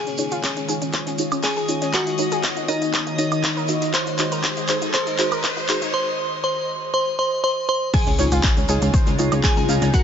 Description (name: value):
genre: progressive house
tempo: 120 BPM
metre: 4/4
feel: straight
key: Db major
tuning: A4 = 441 Hz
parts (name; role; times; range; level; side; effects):
- glassy synth bell; melody; 0.0-10.0 s; Eb4 to C6; -25 LUFS; equal; chorus, tremolo, tape echo
- evolving wavetable pad; sustained chords; 0.0-10.0 s; Db3 to Db5; -28 LUFS; left 1 dB; chorus, built-in reverb, phaser, sidechain pumping
- riser and impact; sound effects; 0.0-9.9 s; none; -33 LUFS; left 1 dB; none
- backwards swelling texture; texture; 0.9-10.0 s; Bb4 to Eb6; -35 LUFS; equal; built-in reverb, sidechain pumping
- analog pluck; arpeggios; 0.1-10.0 s; Db4 to Db5; -29 LUFS; left 2 dB; chorus, sidechain pumping, digital delay
- gated 80s drum kit; drums; 0.1-10.0 s; hi-hat, snare drum; -34 LUFS; left 4 dB; none
- pop drum kit; drums; 0.1-10.0 s; crash cymbal, handclaps, hi-hat, woodblock; -26 LUFS; equal; none
- tube shaker; percussion; 0.1-10.0 s; none; -34 LUFS; right 5 dB; none
- deep mellow chord stab; stabs; 0.2-9.8 s; Eb4 to F5; -28 LUFS; right 1 dB; chorus, vintage 12-bit sampler grit, sidechain pumping, digital delay
- electronic kick drum; drums; 0.4-10.0 s; none; -20 LUFS; left 1 dB; high-pass filter on kick
- soft round pluck; second line; 7.9-10.0 s; Gb5 to Ab5; -34 LUFS; right 2 dB; none
- plucky analog bass; bass; 8.1-9.9 s; Db2; -21 LUFS; left 1 dB; tube saturation, sidechain pumping
room: light reverb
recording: nothing above 7.6 kHz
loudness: -18 LUFS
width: side -8 dB against mid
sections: 0.0-7.9 A section; 7.9-10.0 B section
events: build-up 0.0-7.9; drum fill 0.0-5.9; riser 0.0-5.9; filter sweep on synth pluck 0.0-7.9; filter sweep on synth stab 0.0-7.9; drop 7.9-10.0; impact 7.9-9.9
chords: 0.0 Dbadd9; 1.9 Ebm7; 3.9 Ab7; 5.9 N.C.; 7.9 Dbadd9